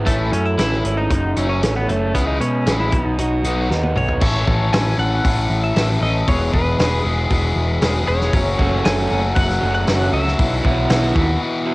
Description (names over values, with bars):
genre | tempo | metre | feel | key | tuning
indie rock | 116 BPM | 4/4 | straight | unclear | A4 = 440 Hz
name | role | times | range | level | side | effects
raw garage guitar | riff | 0.0-4.2, 8.6-11.7 s | F#2 to F#4 | -24 LUFS | right 3 dB | overdrive, wide subtle chorus, cassette tape, analog delay
growling picked electric bass | bass | 0.0-11.4 s | E1 to B2 | -20 LUFS | equal | overdrive
twelve-string electric guitar | melody | 0.1-11.7 s | A3 to G#5 | -24 LUFS | left 1 dB | harmonic tremolo, cassette tape
crunchy overdriven guitar | riff | 0.1-11.7 s | E2 to A4 | -22 LUFS | left 2 dB | spring reverb, cassette tape
loose indie drum kit | drums | 0.1-11.3 s | crash cymbal, hi-hat, kick drum, snare drum, toms | -21 LUFS | equal | cassette tape
room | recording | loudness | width
little or no reverb | home recording on cassette | -16 LUFS | side -22 dB against mid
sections
0.0-4.2 A section; 4.2-11.7 B section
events
drum fill 3.7-4.2; break 11.4-11.7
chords
0.1 A; 1.1 F#m; 2.1 C#m7; 2.9 B; 4.2 A; 6.3 E; 8.3 F#m; 10.4 Bsus4